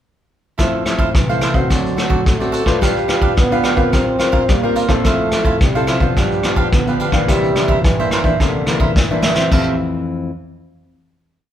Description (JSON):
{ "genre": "samba and choro", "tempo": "108 BPM", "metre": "4/4", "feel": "straight", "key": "F major", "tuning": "A4 = 441 Hz", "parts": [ { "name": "breathy trombone", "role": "second line", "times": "0.6-9.8 s", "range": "C3 to C4", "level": "-21 LUFS", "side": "right 3 dB", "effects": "none" }, { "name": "cavaquinho", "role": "accompaniment", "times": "0.6-9.7 s", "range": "D4 to F5", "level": "-22 LUFS", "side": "right 4 dB", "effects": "none" }, { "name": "nylon-string guitar", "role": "accompaniment", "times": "0.6-10.3 s", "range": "F2 to B4", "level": "-20 LUFS", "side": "left 4 dB", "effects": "none" }, { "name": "vintage brush drum kit", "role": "drums", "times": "0.6-9.6 s", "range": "crash cymbal, hi-hat, kick drum, rim click, snare drum", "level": "-17 LUFS", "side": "equal", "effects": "none" } ], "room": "moderate large studio reverb, RT60 1.2 s", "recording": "band playing live in one room", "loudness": "-13 LUFS", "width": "side -10 dB against mid", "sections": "0.6-9.5 groove; 9.5-11.5 final chord", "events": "drum fill 9.0-9.5", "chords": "0.6 Fmaj7; 1.7 D7; 2.8 G7; 3.9 C7sus4/G; 5.1 Fmaj7; 6.2 G7; 7.3 C9; 9.5 Fmaj7" }